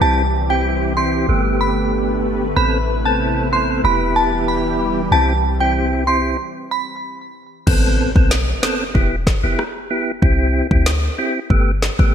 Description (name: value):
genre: dancehall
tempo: 94 BPM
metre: 4/4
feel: straight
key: A minor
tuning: A4 = 439 Hz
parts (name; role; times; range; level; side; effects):
- glassy synth bell; melody; 0.0-6.8 s; G5 to C6; -20 LUFS; right 1 dB; chorus, phaser, digital delay
- percussive tonewheel organ; accompaniment; 0.0-12.1 s; A3 to A4; -20 LUFS; right 1 dB; overdrive, chorus vibrato, fast rotary speaker
- lush unison pad; sustained chords; 0.0-6.4 s; C3 to B4; -24 LUFS; equal; chorus, phaser, sidechain pumping
- clean 808-style bass; bass; 0.0-12.1 s; E1 to D2; -20 LUFS; equal; none
- downlifter and impact; sound effects; 0.0-2.6, 7.7-10.2 s; none; -30 LUFS; equal; none
- afro-pop drum kit; drums; 7.7-12.1 s; crash cymbal, kick drum, rim click, snare drum; -17 LUFS; equal; gated reverb
room: light reverb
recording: bright 1980s-style digital production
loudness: -15 LUFS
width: side -8 dB against mid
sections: 0.0-7.7 A section; 7.7-12.1 B section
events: stop 6.4-7.7; impact 7.7-10.2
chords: 0.0 C; 1.3 Gadd9; 2.6 Amadd9; 3.8 Em; 5.1 C; 6.4 N.C.; 7.7 Amadd9; 8.9 Em; 10.2 C; 11.5 Gadd9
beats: | 0.01 0.65 1.29 1.93 | 2.56 3.20 3.84 4.48 | 5.12 5.76 6.39 7.03 | 7.67 8.31 8.95 9.59 | 10.22 10.86 11.50 12.14